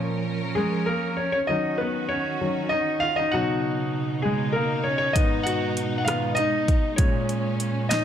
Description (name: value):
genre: six-eight pop ballad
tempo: 65 BPM (dotted quarters)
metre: 6/8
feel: straight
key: unclear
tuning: A4 = 437 Hz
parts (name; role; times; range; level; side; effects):
- clear concert grand piano; accompaniment; 0.0-8.0 s; G#2 to F#5; -24 LUFS; left 1 dB; none
- warm studio string section; sustained chords; 0.0-8.0 s; A#2 to A#4; -29 LUFS; right 4 dB; none
- deep house drum kit; drums; 5.2-8.0 s; hi-hat, kick drum, rim click, snare drum; -23 LUFS; equal; none
room: light reverb, studio reverb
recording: none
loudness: -22 LUFS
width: side -9 dB against mid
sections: 0.0-1.5 A section; 1.5-8.0 B section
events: grand piano solo 0.0-1.5, 1.5-8.0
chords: 0.0 A#m; 1.5 D#m7; 3.3 Badd9; 5.2 G#m; 7.0 A#m7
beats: 0.57 | 1.49 2.41 | 3.33 4.25 | 5.16 6.07 | 6.99 7.90